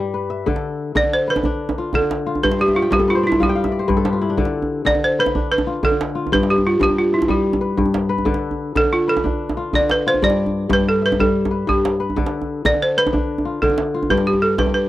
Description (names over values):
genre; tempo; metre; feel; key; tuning
west african traditional, West African string and xylophone music; 123 BPM (dotted quarters); 12/8; straight; D dorian; A4 = 440 Hz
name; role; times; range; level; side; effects
balafon; melody; 0.0-14.9 s; E4 to D5; -18 LUFS; right 2 dB; none
kora; arpeggios; 0.0-14.9 s; G2 to G5; -21 LUFS; left 4 dB; none
djembe; percussion; 0.5-14.7 s; none; -23 LUFS; right 2 dB; none
room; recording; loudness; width
small room ambience; dry, close 1970s-style studio recording; -16 LUFS; side -15 dB against mid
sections
0.5-14.9 A section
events
kora fill 2.5-4.4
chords
0.5 Dm; 2.4 G13; 4.4 Dm; 6.3 G; 8.3 Dm; 10.2 G; 12.2 Dm; 14.1 G